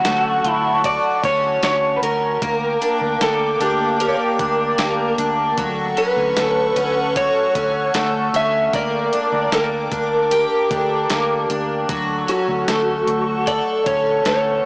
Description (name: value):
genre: dream pop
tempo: 76 BPM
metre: 4/4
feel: straight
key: D major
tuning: A4 = 441 Hz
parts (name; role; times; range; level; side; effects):
- electric slide guitar; melody; 0.0-14.7 s; F#4 to E5; -20 LUFS; equal; tape echo
- phased analog pad; sustained chords; 0.0-14.7 s; Bb3 to D6; -21 LUFS; equal; phaser, chorus
- picked twelve-string acoustic guitar; arpeggios; 0.0-14.7 s; F#3 to A4; -23 LUFS; equal; analog chorus, tape echo
- vintage muted fingered electric bass; bass; 0.0-14.6 s; D2; -30 LUFS; equal; tube saturation
- dusty soul sampler-style drum kit; drums; 0.0-14.4 s; hi-hat, kick drum, snare drum; -24 LUFS; equal; none
room: wet lush hall reverb, RT60 1.8 s, digital ambience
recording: blown-out, overdriven recording, overdrive, small speaker sound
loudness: -16 LUFS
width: side -28 dB against mid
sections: 0.0-14.7 A section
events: none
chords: 0.0 Dmaj7; 2.4 Gm/D; 5.6 Dmaj7; 8.7 Gm/D; 11.9 Dmaj7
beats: 0.05 0.84 1.63 | 2.42 3.21 4.00 4.79 | 5.58 6.37 7.16 7.95 | 8.73 9.52 10.31 11.10 | 11.89 12.68 13.47 14.26